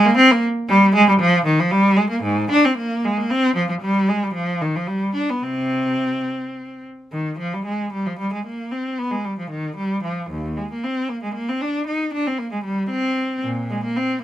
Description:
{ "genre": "classical, baroque-style suite movement for unaccompanied cello", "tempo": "103-119 BPM", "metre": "3/4", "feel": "rubato", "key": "C minor", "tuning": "A4 = 440 Hz", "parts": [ { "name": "rich cello", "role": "solo", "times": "0.0-14.2 s", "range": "Eb2 to Eb4", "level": "-18 LUFS", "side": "equal", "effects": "none" } ], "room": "light reverb", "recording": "minimal, uncompressed stereo recording", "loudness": "-18 LUFS", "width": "side -12 dB against mid", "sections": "0.0-7.1 A section; 7.1-14.2 A section", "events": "none", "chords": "none", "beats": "0.16 | 0.68 1.19 1.70 | 2.23 2.77 3.29 | 3.81 4.34 4.87 | 5.43 6.01 6.56 | 7.12 7.65 8.19 | 8.71 9.23 9.76 | 10.29 10.82 11.35 | 11.87 12.39 12.90 | 13.43 13.95" }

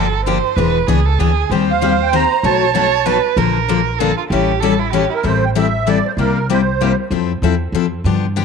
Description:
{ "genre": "acoustic string swing (jazz manouche)", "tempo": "193 BPM", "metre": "3/4", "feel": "swing 60% on 8ths", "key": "A minor from 5.2 s", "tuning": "A4 = 440 Hz", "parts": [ { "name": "dark violin", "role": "second line", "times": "0.0-5.2 s", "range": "E4 to C#5", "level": "-18 LUFS", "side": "right 11 dB", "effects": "none" }, { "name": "picked steel-string acoustic guitar", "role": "accompaniment", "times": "0.0-8.4 s", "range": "B2 to C5", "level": "-17 LUFS", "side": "left 10 dB", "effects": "none" }, { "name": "upright bass", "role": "bass", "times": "0.0-8.4 s", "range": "E1 to G2", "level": "-19 LUFS", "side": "right 1 dB", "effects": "none" }, { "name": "musette accordion", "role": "melody", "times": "1.7-7.0 s", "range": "Bb4 to Bb5", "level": "-18 LUFS", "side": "right 6 dB", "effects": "slapback echo" } ], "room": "moderate spring reverb, RT60 1.6 s, small room ambience", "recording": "1960s-style stereo with parts hard left and right", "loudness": "-13 LUFS", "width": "side -6 dB against mid", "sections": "0.0-5.2 A section; 5.2-8.4 B section", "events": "none", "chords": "0.0 Gm7; 0.6 E7; 1.5 Eb6; 2.4 B9; 3.4 Bbmaj7; 4.3 A7; 5.2 Am7; 6.2 C7; 7.1 Fmaj7", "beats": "0.26 | 0.57 0.88 1.20 | 1.51 1.82 2.13 | 2.44 2.75 3.06 | 3.37 3.69 4.00 | 4.31 4.62 4.93 | 5.24 5.55 5.87 | 6.18 6.49 6.80 | 7.11 7.43 7.74 | 8.05 8.36" }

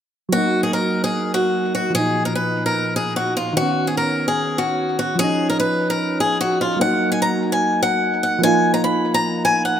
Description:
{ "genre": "hip hop", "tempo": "148 BPM", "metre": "4/4", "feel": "half-time", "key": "Eb minor", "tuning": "A4 = 440 Hz", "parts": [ { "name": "picked swing-style acoustic guitar", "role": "melody", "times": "0.3-9.8 s", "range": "F4 to Cb6", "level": "-19 LUFS", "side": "left 1 dB", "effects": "dub echo" }, { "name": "soft electric-piano-like synth keys", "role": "accompaniment", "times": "0.3-9.8 s", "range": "Bb2 to Gb4", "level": "-21 LUFS", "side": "right 1 dB", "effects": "chorus, dub echo" } ], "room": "moderate spring reverb, RT60 2.5 s", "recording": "echo-heavy mix", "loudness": "-17 LUFS", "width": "side -9 dB against mid", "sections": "0.3-6.8 A section; 6.8-9.8 B section", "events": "none", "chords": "0.3 Ebm; 1.9 Bbsus4; 3.6 Badd9; 5.2 Dbadd9; 6.8 Ebm; 8.4 Bbsus4", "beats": "| 0.33 0.73 1.14 1.54 | 1.95 2.35 2.76 3.16 | 3.57 3.97 4.38 4.79 | 5.19 5.60 6.00 6.41 | 6.81 7.22 7.62 8.03 | 8.43 8.84 9.24 9.65" }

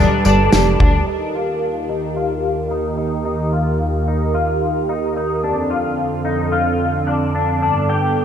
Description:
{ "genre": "dream pop", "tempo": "110 BPM", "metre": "4/4", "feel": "straight", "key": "unclear", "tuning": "A4 = 440 Hz", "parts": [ { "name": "felt-muted upright piano", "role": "melody", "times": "0.0-0.5 s", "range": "none", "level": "barely audible", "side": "none", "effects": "none" }, { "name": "phased analog pad", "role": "sustained chords", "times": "0.0-8.2 s", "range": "Eb2 to B4", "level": "-19 LUFS", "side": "right 1 dB", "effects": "phaser, chorus, low-pass filter" }, { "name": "clean electric guitar", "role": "arpeggios", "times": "0.0-8.2 s", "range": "D4 to G4", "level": "-21 LUFS", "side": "left 3 dB", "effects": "ensemble chorus, low-pass filter, tape echo" }, { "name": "plucky analog bass", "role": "bass", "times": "0.0-1.0 s", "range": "F1 to D2", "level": "-16 LUFS", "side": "equal", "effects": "none" }, { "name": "loose indie drum kit", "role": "drums", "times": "0.2-0.9 s", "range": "kick drum, snare drum, tambourine, toms", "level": "-16 LUFS", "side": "equal", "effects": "none" } ], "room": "moderate huge ambient reverb, RT60 5.4 s", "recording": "dark, warm production", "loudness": "-16 LUFS", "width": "side -8 dB against mid", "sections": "0.0-1.1 A section; 1.1-8.2 B section", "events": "none", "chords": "0.0 Gadd9; 1.1 Eb; 5.4 Dm7/F; 7.6 Gadd9", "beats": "0.52 | 1.07 1.61 2.16 2.71 | 3.25 3.80 4.34 4.89 | 5.43 5.98 6.52 7.07 | 7.62 8.16" }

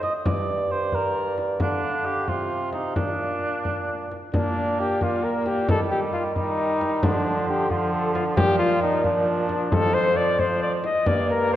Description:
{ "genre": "classical, renaissance-style consort dance", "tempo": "89 BPM (dotted quarters)", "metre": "6/8", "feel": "straight", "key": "unclear", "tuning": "A4 = 440 Hz", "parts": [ { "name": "mellow cornet", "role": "melody", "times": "0.0-11.6 s", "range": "D4 to F5", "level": "-25 LUFS", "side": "left 2 dB", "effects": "none" }, { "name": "mellow cor anglais", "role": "second line", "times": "0.0-11.6 s", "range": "F3 to Eb5", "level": "-28 LUFS", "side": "right 2 dB", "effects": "none" }, { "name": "mellow bassoon", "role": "bass", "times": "0.0-11.6 s", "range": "F2 to Eb3", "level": "-27 LUFS", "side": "right 1 dB", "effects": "none" }, { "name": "frame drum", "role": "percussion", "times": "0.0-11.3 s", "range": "none", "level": "-28 LUFS", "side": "left 1 dB", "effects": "none" } ], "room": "wet scoring stage reverb, RT60 1.9 s", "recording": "worn, warbling old tape, cassette tape, warbly pitch drift", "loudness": "-21 LUFS", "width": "side -12 dB against mid", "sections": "0.0-4.3 A section; 4.3-11.6 A section", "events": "none", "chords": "0.3 Gm; 1.6 Dm; 3.0 Bb; 5.7 Eb; 7.0 Dm; 8.4 Bb; 9.7 F5; 11.1 Gm", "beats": "| 0.26 0.93 | 1.60 2.28 | 2.96 3.65 | 4.33 5.01 | 5.68 6.36 | 7.03 7.70 | 8.37 9.04 | 9.71 10.38 | 11.05" }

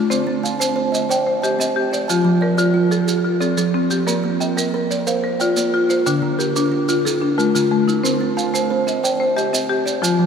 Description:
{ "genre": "southern african traditional, mbira-style interlocking cycle", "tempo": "121 BPM (dotted quarters)", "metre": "12/8", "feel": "straight", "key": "C equiheptatonic", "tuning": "A4 = 440 Hz", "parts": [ { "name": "buzzing kalimba", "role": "arpeggios", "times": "0.0-10.3 s", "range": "D3-29c to A5-43c", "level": "-20 LUFS", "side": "right 4 dB", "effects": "none" }, { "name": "buzzing marimba with medium hard mallets", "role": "arpeggios", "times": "0.0-10.3 s", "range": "D3-29c to G5", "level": "-18 LUFS", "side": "left 3 dB", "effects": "none" }, { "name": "maracas", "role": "percussion", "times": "0.1-10.2 s", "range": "none", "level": "-27 LUFS", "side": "right 6 dB", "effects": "none" } ], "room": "wet cathedral reverb, RT60 6.0 s", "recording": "in a vast, echoing space", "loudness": "-16 LUFS", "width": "side -6 dB against mid", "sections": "0.1-10.3 A section", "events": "none", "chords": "0.1 Cm; 2.1 F; 4.1 Bb; 6.1 Dm; 8.0 Cm", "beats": "| 0.10 0.60 1.09 1.59 | 2.09 2.58 3.08 3.58 | 4.07 4.57 5.07 5.56 | 6.06 6.55 7.05 7.55 | 8.04 8.54 9.04 9.53 | 10.03" }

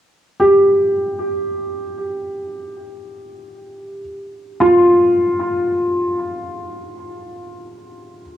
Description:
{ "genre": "ambient", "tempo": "free time", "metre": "none", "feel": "none", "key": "unclear", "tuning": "A4 = 442 Hz", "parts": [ { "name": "felt-muted upright piano", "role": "solo", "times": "0.4-8.4 s", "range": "F4 to G4", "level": "-16 LUFS", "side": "equal", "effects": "analog delay" } ], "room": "moderate small room reverb, RT60 0.5 s", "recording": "home recording on cassette", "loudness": "-14 LUFS", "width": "side -11 dB against mid", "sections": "0.0-8.4 A section", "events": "none", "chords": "none", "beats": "free time" }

